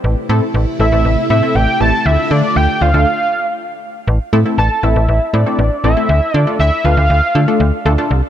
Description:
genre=synth-pop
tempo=119 BPM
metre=4/4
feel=straight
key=unclear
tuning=A4 = 438 Hz
part: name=string machine, full ensemble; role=sustained chords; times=0.0-3.1 s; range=C3 to F4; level=-22 LUFS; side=right 1 dB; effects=ensemble chorus
part: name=slap-like FM bass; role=bass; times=0.0-8.2 s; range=A1 to D3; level=-13 LUFS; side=equal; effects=none
part: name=funky polysynth comp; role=accompaniment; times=0.3-8.1 s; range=A3 to C5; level=-19 LUFS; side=left 1 dB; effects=chorus
part: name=fat analog lead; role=melody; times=0.8-7.9 s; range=D5 to A5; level=-17 LUFS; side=equal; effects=chorus, ping-pong delay
room=light reverb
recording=none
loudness=-11 LUFS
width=side -10 dB against mid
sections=0.0-4.1 A section; 4.1-8.3 B section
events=stop 3.1-4.1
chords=0.0 Am; 2.1 Dm; 4.1 Am; 6.1 Dmadd9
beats=| 0.04 0.55 1.05 1.55 | 2.06 2.56 3.07 3.57 | 4.08 4.58 5.08 5.59 | 6.09 6.60 7.10 7.60 | 8.11

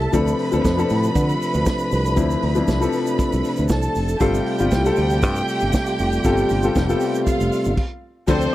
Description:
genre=disco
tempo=118 BPM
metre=4/4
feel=straight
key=unclear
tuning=A4 = 440 Hz
part: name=warm studio violin section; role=second line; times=0.0-8.5 s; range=C4 to B5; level=-26 LUFS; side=right 1 dB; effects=none
part: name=warm grand piano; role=accompaniment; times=0.0-8.5 s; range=F3 to A4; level=-23 LUFS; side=left 4 dB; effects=none
part: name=percussive tonewheel organ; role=sustained chords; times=0.0-8.5 s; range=C3 to E5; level=-25 LUFS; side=right 2 dB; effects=chorus vibrato, slow rotary speaker
part: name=fingered electric bass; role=bass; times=0.0-8.5 s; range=F1 to D3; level=-21 LUFS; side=equal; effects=none
part: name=vintage drum kit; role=drums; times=0.0-8.4 s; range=crash cymbal, hi-hat, kick drum, snare drum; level=-23 LUFS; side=equal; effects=none
part: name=egg shaker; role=percussion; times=0.1-8.5 s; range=none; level=-40 LUFS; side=right 8 dB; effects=none
room=studio ambience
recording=dry, close 1970s-style studio recording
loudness=-17 LUFS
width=side -15 dB against mid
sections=0.0-8.3 A section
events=stop 7.8-8.3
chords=0.1 Dm7; 4.2 G9sus4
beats=| 0.14 0.65 1.16 1.66 | 2.17 2.68 3.19 3.70 | 4.21 4.72 5.23 5.74 | 6.25 6.76 7.26 7.77 | 8.28

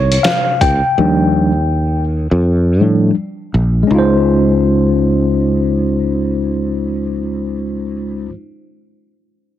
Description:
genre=hip hop, jazz-hop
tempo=82 BPM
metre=4/4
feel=swing 65% on 16ths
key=Db major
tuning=A4 = 440 Hz
part: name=mellow tine electric piano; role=accompaniment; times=0.0-8.3 s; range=C3 to G5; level=-15 LUFS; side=left 1 dB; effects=medium stereo tremolo
part: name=sustaining fretless electric bass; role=bass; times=0.0-8.3 s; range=Bb1 to A2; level=-16 LUFS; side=equal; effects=none
part: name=lo-fi sampler-style drum kit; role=drums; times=0.1-0.8 s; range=hi-hat, kick drum, snare drum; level=-17 LUFS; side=right 1 dB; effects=none
room=light reverb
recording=heavily compressed radio sound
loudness=-12 LUFS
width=side -12 dB against mid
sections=0.0-3.9 A section; 3.9-6.8 B section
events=tine electric piano solo 0.0-3.9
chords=0.0 Dbmaj7; 1.0 Ebmaj9; 3.9 Dbmaj9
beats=0.24 | 0.98 1.71 2.44 3.17 | 3.90 4.63 5.37 6.10

